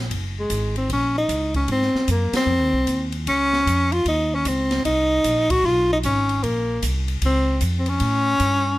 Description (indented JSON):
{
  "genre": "jazz, small-group swing and bop",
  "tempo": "152 BPM",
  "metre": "4/4",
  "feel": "swing 64% on 8ths",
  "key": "Bb minor",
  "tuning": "A4 = 440 Hz",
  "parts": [
    { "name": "upright bass", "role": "bass", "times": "0.0-8.8 s", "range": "Gb1 to A2", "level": "-24 LUFS", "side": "equal", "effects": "none" },
    { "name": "open jazz drum kit", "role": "drums", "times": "0.1-8.5 s", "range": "hi-hat, kick drum, ride cymbal, snare drum", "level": "-30 LUFS", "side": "left 1 dB", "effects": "none" },
    { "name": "breathy tenor saxophone", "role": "melody", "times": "0.4-8.8 s", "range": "Ab3 to Gb4", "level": "-20 LUFS", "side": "equal", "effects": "none" }
  ],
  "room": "light reverb",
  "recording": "close, detailed microphones",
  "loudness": "-18 LUFS",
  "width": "side -17 dB against mid",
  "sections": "0.0-8.8 A section",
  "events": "band accent 2.3",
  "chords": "0.1 Gb69; 1.7 Ab; 3.3 Dbmaj9; 4.8 Eb5; 5.6 Bsus2; 6.4 Bbmadd9; 8.0 A7",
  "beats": "| 0.10 0.50 0.89 1.29 | 1.69 2.08 2.48 2.87 | 3.27 3.66 4.06 4.45 | 4.85 5.24 5.64 6.03 | 6.43 6.82 7.22 7.61 | 8.01 8.40"
}